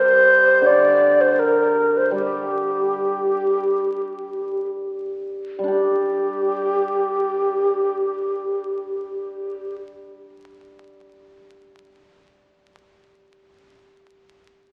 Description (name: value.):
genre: chinese traditional, Chinese chamber ensemble.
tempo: free time.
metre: none.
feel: none.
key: unclear.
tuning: A4 = 440 Hz.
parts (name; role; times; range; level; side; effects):
xiao; melody; 0.0-9.8 s; G4 to D5; -20 LUFS; equal; none.
hammered dulcimer; accompaniment; 0.0-13.7 s; D3 to G4; -29 LUFS; equal; none.
room: wet scoring stage reverb, RT60 1.9 s.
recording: very old 78 rpm record, vinyl crackle.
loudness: -20 LUFS.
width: mono.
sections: 0.0-5.7 A section; 5.7-9.7 B section.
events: slowing down 0.0-5.7.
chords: none.